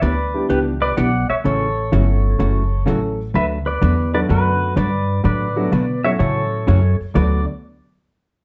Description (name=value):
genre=country, western swing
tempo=126 BPM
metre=4/4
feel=swing 67% on 8ths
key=D major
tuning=A4 = 439 Hz
part: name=pedal steel guitar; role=melody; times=0.0-7.4 s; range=F#4 to F#5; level=-24 LUFS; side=equal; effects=none
part: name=hollow-body jazz guitar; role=accompaniment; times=0.0-7.4 s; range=C#3 to B4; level=-24 LUFS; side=equal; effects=none
part: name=upright bass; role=bass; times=0.0-7.5 s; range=F#1 to B2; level=-21 LUFS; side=equal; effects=none
part: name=warm upright piano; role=accompaniment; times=0.3-7.4 s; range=F#3 to A4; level=-27 LUFS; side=equal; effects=none
room=wet studio reverb, RT60 0.7 s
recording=band playing live in one room, nothing above 7.9 kHz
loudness=-18 LUFS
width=mono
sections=0.0-7.1 A section; 7.1-8.4 B section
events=none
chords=0.0 Em7; 1.4 A6; 3.3 D6; 6.2 A6; 7.1 D6